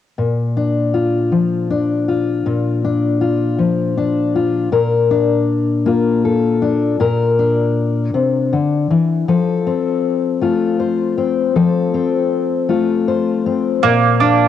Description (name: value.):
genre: folk.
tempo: 53 BPM (dotted quarters).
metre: 6/8.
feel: straight.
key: unclear.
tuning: A4 = 440 Hz.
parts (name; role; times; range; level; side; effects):
fingerpicked steel-string acoustic guitar; accompaniment; 0.2-14.5 s; Bb2 to C5; -14 LUFS; left 4 dB; cassette tape.
mandolin; arpeggios; 13.8-14.5 s; Bb3 to D4; -12 LUFS; right 9 dB; cassette tape.
room: moderate lush hall reverb, RT60 2.6 s.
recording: home recording on cassette.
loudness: -14 LUFS.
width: side -10 dB against mid.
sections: 0.2-4.7 A section; 4.7-14.5 B section.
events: none.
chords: 0.2 Bb; 9.3 F; 13.8 Bb.